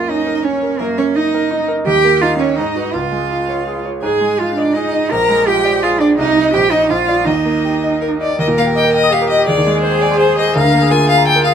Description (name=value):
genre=quick classical-period movement for piano trio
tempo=167 BPM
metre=3/4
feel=rubato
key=Eb major from 4.0 s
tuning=A4 = 440 Hz
part: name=warm cello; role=second line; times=0.0-11.5 s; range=A#3 to Bb4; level=-16 LUFS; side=right 4 dB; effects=none
part: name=bright concert grand piano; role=accompaniment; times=0.0-11.5 s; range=Bb1 to Eb6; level=-17 LUFS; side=equal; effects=none
part: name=clear violin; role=melody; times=0.1-11.5 s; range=Bb4 to Bb5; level=-18 LUFS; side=left 5 dB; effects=none
room=light reverb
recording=none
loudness=-12 LUFS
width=side -8 dB against mid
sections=0.0-8.4 A section; 8.4-11.5 B section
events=none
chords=0.0 F#; 0.8 D#m/F#; 1.9 D#7; 2.6 G#m7; 2.9 C#; 4.0 Fm7/Ab; 5.1 Bb7; 6.2 Cm; 6.5 Eb/Bb; 6.9 Bb; 7.3 Eb; 9.5 Ab/Eb; 10.6 Bb7/D